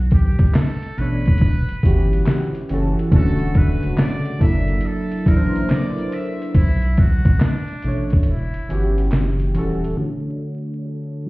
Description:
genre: lo-fi hip hop.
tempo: 70 BPM.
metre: 4/4.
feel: swing 65% on 16ths.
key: E dorian.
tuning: A4 = 440 Hz.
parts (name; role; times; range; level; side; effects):
saturated sub bass; bass; 0.0-9.9 s; D1 to B1; -20 LUFS; equal; none.
trumpet with metal mute; melody; 0.1-11.3 s; D4 to E5; -32 LUFS; equal; low-pass filter, analog delay, plate reverb.
lo-fi sampler-style drum kit; drums; 0.1-10.0 s; handclaps, hi-hat, kick drum, snare drum; -16 LUFS; equal; none.
warm analog keys; accompaniment; 1.0-11.3 s; B2 to C#5; -22 LUFS; equal; chorus, phaser, cassette tape, low-pass filter, plate reverb.
room: light reverb.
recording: heard muffled through a wall, stone room reverb, vinyl crackle, EQ.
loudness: -16 LUFS.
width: side -21 dB against mid.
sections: 0.0-10.0 A section; 10.0-11.3 B section.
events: break 8.3-10.0; filter sweep 10.0-11.3.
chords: 0.0 Bm9; 1.4 Em69; 3.1 Dmaj7; 4.4 F#7alt; 6.5 Bm9; 8.3 Em69; 10.0 Dmaj7.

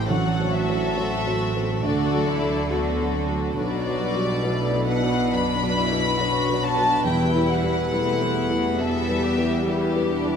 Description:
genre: cinematic.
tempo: 69 BPM.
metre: 4/4.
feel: rubato.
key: E minor.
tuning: A4 = 437 Hz.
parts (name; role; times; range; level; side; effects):
warm symphonic violin section; melody; 0.0-10.1 s; D5 to B5; -27 LUFS; left 2 dB; none.
warm symphonic violin section; second line; 0.0-10.4 s; D4 to B4; -28 LUFS; left 4 dB; none.
dark symphonic viola section; accompaniment; 0.0-10.4 s; F#3 to E4; -28 LUFS; equal; none.
felt-muted upright piano; accompaniment; 0.0-10.4 s; A1 to C5; -26 LUFS; equal; none.
rich symphonic cello section; bass; 0.0-10.4 s; E2 to D3; -30 LUFS; right 3 dB; none.
warm symphonic double bass section; bass; 0.0-10.4 s; E1 to D2; -30 LUFS; right 1 dB; none.
room: wet scoring stage reverb, RT60 1.6 s.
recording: minimal, uncompressed stereo recording.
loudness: -20 LUFS.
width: side -7 dB against mid.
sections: 0.0-10.4 A section.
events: none.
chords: 0.1 F#dim/A; 1.8 D; 3.6 Bm; 7.1 Em.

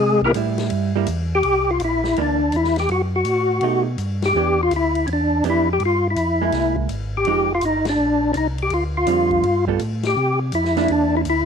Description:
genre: soul jazz organ trio.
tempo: 165 BPM.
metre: 4/4.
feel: swing 66% on 8ths.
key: C mixolydian.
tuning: A4 = 440 Hz.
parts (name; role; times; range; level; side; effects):
percussive tonewheel organ; melody; 0.0-11.5 s; Ab3 to Bb4; -18 LUFS; left 2 dB; slow rotary speaker, overdrive, chorus vibrato.
mellow tonewheel organ; bass; 0.0-11.5 s; F1 to C3; -24 LUFS; equal; slow rotary speaker.
vintage drum kit; drums; 0.2-11.4 s; hi-hat, kick drum, ride cymbal, snare drum; -34 LUFS; left 6 dB; none.
vintage hollow-body jazz guitar; accompaniment; 0.4-11.2 s; D3 to A4; -24 LUFS; right 14 dB; none.
room: light reverb, small room ambience.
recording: 1960s-style stereo with parts hard left and right.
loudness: -17 LUFS.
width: side -7 dB against mid.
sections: 0.0-1.4 A section; 1.4-11.5 B section.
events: tonewheel organ solo 0.0-1.4; band accent 4.2, 7.8, 10.0.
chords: 0.0 C; 1.4 C9; 2.9 F#m; 3.6 B7b13; 4.3 Em7; 5.8 Fmmaj7; 6.5 Caug7; 7.3 Fm9; 8.7 Dm7; 9.4 G9; 10.2 C9.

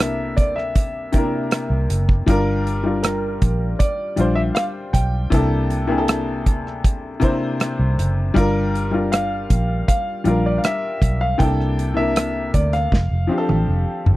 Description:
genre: lush 1970s-style soul.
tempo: 79 BPM.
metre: 4/4.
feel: straight.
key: G dorian.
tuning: A4 = 440 Hz.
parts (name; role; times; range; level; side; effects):
clear grand piano; melody; 0.0-14.0 s; Bb4 to G5; -25 LUFS; equal; none.
clear grand piano; accompaniment; 0.0-14.2 s; C3 to C5; -22 LUFS; left 2 dB; none.
vintage muted fingered electric bass; bass; 0.0-14.2 s; F1 to D2; -21 LUFS; equal; none.
modern studio drum kit; drums; 0.0-14.2 s; hi-hat, kick drum, rim click, snare drum, toms; -18 LUFS; equal; none.
room: small room reverb.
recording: dry, close 1970s-style studio recording.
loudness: -17 LUFS.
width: side -17 dB against mid.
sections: 0.0-14.2 A section.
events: drum fill 12.9-14.2.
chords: 0.0 C13; 2.3 Gm7; 5.3 C13; 8.4 Gm7; 11.4 C13; 12.9 F6.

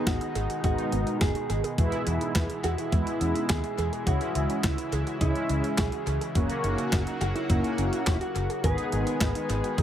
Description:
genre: synth-pop.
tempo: 105 BPM.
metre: 4/4.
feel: straight.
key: unclear.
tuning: A4 = 440 Hz.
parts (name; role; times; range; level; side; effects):
mellow electric guitar; melody; 0.0-9.8 s; E4 to B4; -33 LUFS; left 1 dB; tape echo.
mellow synth brass; accompaniment; 0.0-9.8 s; G#3 to G#4; -32 LUFS; equal; chorus.
lush unison pad; sustained chords; 0.0-9.8 s; B2 to G#4; -34 LUFS; equal; chorus.
warbly dusty pluck; arpeggios; 0.0-9.8 s; B3 to G#4; -37 LUFS; right 7 dB; chorus, tape echo.
vintage muted fingered electric bass; bass; 0.1-9.8 s; E1 to E2; -30 LUFS; equal; none.
clean 12-bit digital drum machine; drums; 0.1-9.8 s; handclaps, hi-hat, kick drum, snare drum, toms; -28 LUFS; equal; tape echo.
room: moderate spring reverb, RT60 2.4 s.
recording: echo-heavy mix.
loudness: -25 LUFS.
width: side -10 dB against mid.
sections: 0.0-9.8 A section.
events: none.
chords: 0.0 G#m; 1.8 E; 4.1 C#m; 6.4 F#; 8.6 G#m.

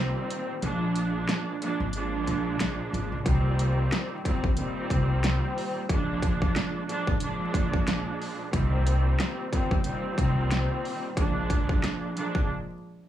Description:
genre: hip hop, boom-bap hip-hop.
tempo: 91 BPM.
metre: 4/4.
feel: swing 57% on 16ths.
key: unclear.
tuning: A4 = 440 Hz.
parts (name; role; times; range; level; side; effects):
rich symphonic string section; accompaniment; 0.0-12.5 s; Bb2 to D4; -29 LUFS; right 1 dB; cassette tape, high-pass filter, low-pass filter.
upright bass; bass; 0.0-12.5 s; Ab1 to C2; -28 LUFS; equal; none.
dubstep drum kit; drums; 0.3-12.5 s; hi-hat, kick drum, snare drum; -28 LUFS; equal; none.
room: little or no reverb.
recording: dry, gritty hardware recording, transformer saturation, vinyl crackle, studio reverb.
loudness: -25 LUFS.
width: side -12 dB against mid.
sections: 0.0-13.1 A section.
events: break 0.0-3.3, 12.5-13.1.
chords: 0.0 Cm7; 0.6 Bb7; 3.3 Cm7; 5.9 Bb7; 8.5 Cm7; 11.2 Bb7.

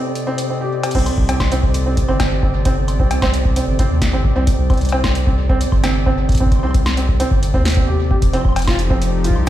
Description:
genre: IDM.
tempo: 132 BPM.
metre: 4/4.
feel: straight.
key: C dorian.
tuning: A4 = 436 Hz.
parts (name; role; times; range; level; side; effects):
warm analog pad; sustained chords; 0.0-9.5 s; C3 to Eb5; -23 LUFS; left 2 dB; chorus.
electro analog drum machine; drums; 0.2-9.5 s; cowbell, crash cymbal, hi-hat, shaker, snare drum, woodblock; -25 LUFS; left 2 dB; tape echo.
felt-muted upright piano; arpeggios; 0.3-9.3 s; C4 to G4; -23 LUFS; right 2 dB; tape echo.
round analog bass; bass; 0.9-9.5 s; F1 to Eb2; -19 LUFS; equal; tube saturation.
electronic kick drum; drums; 0.9-9.4 s; none; -18 LUFS; equal; none.
room: digital ambience.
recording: played on a big sound system in a bare room, stone room reverb.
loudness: -14 LUFS.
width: side -13 dB against mid.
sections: 0.9-9.5 A section.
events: none.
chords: 0.0 Cm69; 8.2 F13.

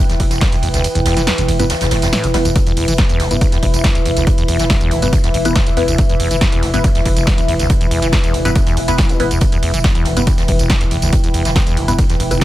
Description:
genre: driving peak-time techno.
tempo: 140 BPM.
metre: 4/4.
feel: straight.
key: E minor.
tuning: A4 = 441 Hz.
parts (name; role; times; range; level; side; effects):
acid bass, saw; riff; 0.0-12.4 s; E1 to G3; -21 LUFS; equal; sidechain pumping.
analog drone; drone; 0.0-12.4 s; E3 to E4; -24 LUFS; equal; chorus, sidechain pumping.
warbly tape-like pad; texture; 0.0-12.4 s; E4 to G5; -23 LUFS; equal; chorus, built-in reverb, sidechain pumping.
growling 808-style bass; bass; 0.1-12.4 s; E1; -21 LUFS; equal; tube saturation, sidechain pumping, low-pass filter.
jazz brush drum kit; drums; 0.1-12.4 s; hi-hat, snare drum; -29 LUFS; right 2 dB; high-pass filter on hats, high-pass filter on snare, high-pass filter on room.
punchy analog drum machine; drums; 0.1-12.4 s; hi-hat, ride cymbal, snare drum, tambourine; -22 LUFS; right 1 dB; sidechain pumping on hats, sidechain pumping on cymbals, sidechain pumping on perc.
electronic kick drum; drums; 0.2-12.4 s; none; -14 LUFS; equal; none.
filtered dub chord stab; stabs; 1.6-12.4 s; B3 to B4; -22 LUFS; left 1 dB; phaser, cassette tape, sidechain pumping, dub echo.
room: little or no reverb.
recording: none.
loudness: -12 LUFS.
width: side -15 dB against mid.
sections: 0.0-12.4 A section.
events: kick drops out 0.8-2.6.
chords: 0.0 E5.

